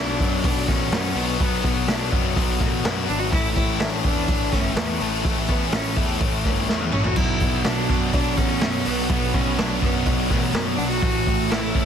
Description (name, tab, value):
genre	quiet-loud alternative rock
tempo	125 BPM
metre	4/4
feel	straight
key	B minor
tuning	A4 = 439 Hz
part	bright cello	melody	0.0-11.9 s	A3 to F#4	-28 LUFS	left 1 dB	slapback echo
part	biting overdriven guitar	riff	0.0-11.9 s	A2 to F#4	-29 LUFS	equal	spring reverb
part	heavy high-gain guitar	riff	0.0-11.9 s	A2 to B3	-28 LUFS	left 13 dB	distortion
part	fuzz picked electric bass	bass	0.0-11.9 s	G1 to F#2	-28 LUFS	equal	overdrive
part	raw garage drum kit	drums	0.2-11.9 s	crash cymbal, hi-hat, kick drum, snare drum, toms	-23 LUFS	equal	none
part	thick fuzz guitar	riff	7.2-11.9 s	A2 to B3	-26 LUFS	right 11 dB	distortion
room	small room ambience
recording	dense, heavily limited modern master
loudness	-19 LUFS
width	side -8 dB against mid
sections	0.0-11.9 A section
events	drum fill 6.7-7.2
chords	0.0 Bm; 3.3 A; 7.2 Bm; 11.0 A